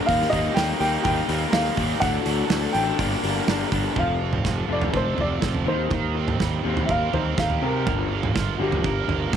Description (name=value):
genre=indie rock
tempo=123 BPM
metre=4/4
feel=straight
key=G minor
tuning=A4 = 439 Hz
part: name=clear upright piano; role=melody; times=0.0-9.3 s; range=Eb4 to G5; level=-27 LUFS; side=left 1 dB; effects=none
part: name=lush unison pad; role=sustained chords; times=0.0-4.0 s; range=F#4 to Bb5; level=-36 LUFS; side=right 1 dB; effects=none
part: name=electric guitar through a small old amp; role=riff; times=0.0-9.4 s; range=G2 to Eb4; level=-29 LUFS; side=left 16 dB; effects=warbly pitch drift
part: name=raw garage guitar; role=riff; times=0.0-9.4 s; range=G2 to Bb4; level=-28 LUFS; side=right 13 dB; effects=overdrive, lush chorus, tape echo
part: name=fuzz fingered electric bass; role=bass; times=0.1-9.4 s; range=F1 to C3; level=-26 LUFS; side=equal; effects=overdrive
part: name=loose indie drum kit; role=drums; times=0.1-9.4 s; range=hi-hat, kick drum, snare drum, toms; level=-27 LUFS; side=right 3 dB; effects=none
room=studio reverb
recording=1960s-style stereo with parts hard left and right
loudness=-20 LUFS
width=side -8 dB against mid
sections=0.0-4.0 A section; 4.0-9.4 B section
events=upright piano solo 4.0-9.4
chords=0.1 Eb; 2.0 D; 3.0 Gm; 4.0 F; 5.7 Cm7/Eb; 7.9 Gm7